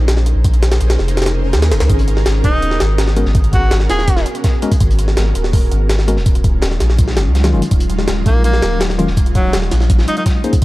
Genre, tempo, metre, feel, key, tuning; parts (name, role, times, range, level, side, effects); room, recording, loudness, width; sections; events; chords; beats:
drum and bass, jungle; 165 BPM; 4/4; straight; G# dorian; A4 = 440 Hz
soft dub sub bass; bass; 0.0-10.6 s; D#1 to D#2; -15 LUFS; equal
jungle sampler-style drum kit; drums; 0.1-10.6 s; hi-hat, kick drum, snare drum; -16 LUFS; equal
crunchy breakbeat drum kit; drums; 1.9-10.6 s; hi-hat, shaker, snare drum; -32 LUFS; left 1 dB; high-pass filter on hats, high-pass filter on snare, high-pass filter on perc, high-pass filter on room
breathy tenor saxophone; melody; 2.4-4.3, 8.3-10.2 s; F#3 to G#4; -20 LUFS; equal; dub echo
tine electric piano; stabs; 3.2-10.5 s; D#3 to B#4; -20 LUFS; left 2 dB; medium tremolo, dub echo
studio ambience; dry, gritty hardware recording, vinyl crackle; -12 LUFS; side -18 dB against mid
0.0-10.6 A section
0.0 A#m11; 1.9 G#m11; 6.3 D#m11; 9.9 A#m11
0.08 | 0.44 0.81 1.17 1.53 | 1.90 2.26 2.62 2.99 | 3.35 3.72 4.08 4.44 | 4.81 5.17 5.53 5.90 | 6.26 6.62 6.99 7.35 | 7.72 8.08 8.44 8.81 | 9.17 9.53 9.90 10.26 | 10.62